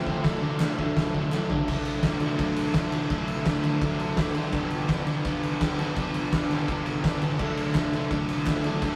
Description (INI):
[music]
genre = garage rock duo or trio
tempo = 168 BPM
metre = 4/4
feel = straight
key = unclear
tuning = A4 = 441 Hz
[part]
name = crunchy overdriven guitar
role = riff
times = 0.0-9.0 s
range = F2 to D4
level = -30 LUFS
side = equal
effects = none
[part]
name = oversized low-tuned drum kit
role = drums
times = 0.1-8.9 s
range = crash cymbal, kick drum, ride cymbal, snare drum, toms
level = -29 LUFS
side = equal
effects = none
[part]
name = group handclap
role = percussion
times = 0.6-1.4, 7.7-8.5 s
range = none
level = -46 LUFS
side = equal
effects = none
[sound]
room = light reverb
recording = rough rehearsal-room recording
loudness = -26 LUFS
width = mono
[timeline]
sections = 0.0-1.7 A section; 1.7-9.0 B section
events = drum fill 1.3-1.7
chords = 0.2 D; 4.5 G; 7.4 D